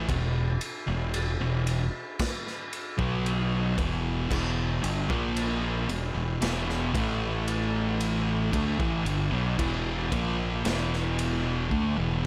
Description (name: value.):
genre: stoner and doom metal.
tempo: 57 BPM.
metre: 4/4.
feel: straight.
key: E minor.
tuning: A4 = 440 Hz.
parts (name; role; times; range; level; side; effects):
thick fuzz guitar; riff; 0.0-12.3 s; E2 to B3; -33 LUFS; equal; distortion.
thick fuzz guitar; riff; 0.0-12.3 s; E2 to B3; -33 LUFS; equal; distortion.
growling fingered electric bass; bass; 0.0-12.3 s; E1 to D2; -34 LUFS; equal; overdrive.
raw garage drum kit; drums; 0.1-12.0 s; crash cymbal, kick drum, ride cymbal, snare drum; -35 LUFS; equal; none.
room: light reverb, small room ambience.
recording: none.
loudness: -28 LUFS.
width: mono.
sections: 0.0-12.3 A section.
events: drum fill 11.7-12.3.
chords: 0.1 E5; 6.9 A5; 8.5 Em.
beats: | 0.08 1.14 2.19 3.25 | 4.30 5.36 6.41 7.47 | 8.53 9.59 10.65 11.71.